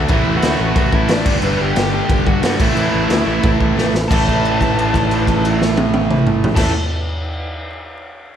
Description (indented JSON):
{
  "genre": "punk rock",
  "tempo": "180 BPM",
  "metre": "4/4",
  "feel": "straight",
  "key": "unclear",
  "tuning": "A4 = 440 Hz",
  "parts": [
    { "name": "distorted electric guitar", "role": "riff", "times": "0.0-6.7 s", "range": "G2 to A3", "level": "-23 LUFS", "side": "left 8 dB", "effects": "distortion, slapback echo" },
    { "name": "distorted electric guitar", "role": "riff", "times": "0.0-6.7 s", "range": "G2 to A3", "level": "-21 LUFS", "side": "right 9 dB", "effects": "distortion, slapback echo" },
    { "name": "overdriven electric guitar", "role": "riff", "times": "0.0-6.7 s", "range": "G2 to D4", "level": "-24 LUFS", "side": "right 2 dB", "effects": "slapback echo" },
    { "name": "modern bright picked electric bass", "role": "bass", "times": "0.0-6.7 s", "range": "G1 to G2", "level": "-21 LUFS", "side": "equal", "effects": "none" },
    { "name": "smooth overdriven lead guitar", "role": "melody", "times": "0.1-6.7 s", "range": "B3 to A5", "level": "-23 LUFS", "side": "left 2 dB", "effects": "slapback echo" },
    { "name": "raw garage drum kit", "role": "drums", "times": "0.1-6.6 s", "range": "crash cymbal, kick drum, snare drum, toms", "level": "-18 LUFS", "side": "equal", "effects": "none" }
  ],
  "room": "moderate lush hall reverb, RT60 1.7 s, small room ambience",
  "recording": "big arena sound, vinyl crackle",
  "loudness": "-13 LUFS",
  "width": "side -9 dB against mid",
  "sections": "0.0-4.1 A section; 4.1-6.8 B section",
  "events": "drum fill 3.8-4.1; held note 4.1-6.6",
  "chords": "0.1 A5; 1.3 G; 2.6 A5",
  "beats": "| 0.10 0.44 0.77 1.10 | 1.43 1.77 2.10 2.43 | 2.76 3.10 3.43 3.76 | 4.09 4.43 4.76 5.09 | 5.43 5.76 6.09 6.43"
}